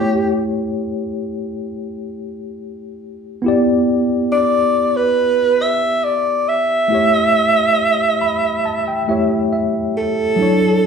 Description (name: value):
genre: reggae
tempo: 69 BPM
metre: 4/4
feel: straight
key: unclear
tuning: A4 = 440 Hz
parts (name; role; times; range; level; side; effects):
- breathy alto saxophone; melody; 0.0-10.9 s; G4 to E5; -15 LUFS; right 2 dB; none
- tine electric piano; accompaniment; 0.0-10.9 s; F#3 to B5; -19 LUFS; left 1 dB; overdrive, medium stereo tremolo
room: wet large studio reverb, RT60 0.9 s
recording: band playing live in one room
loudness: -14 LUFS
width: side -6 dB against mid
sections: 0.0-10.4 A section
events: tine electric piano fill 7.8-10.4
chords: 0.0 A7; 3.4 Em7; 6.9 A7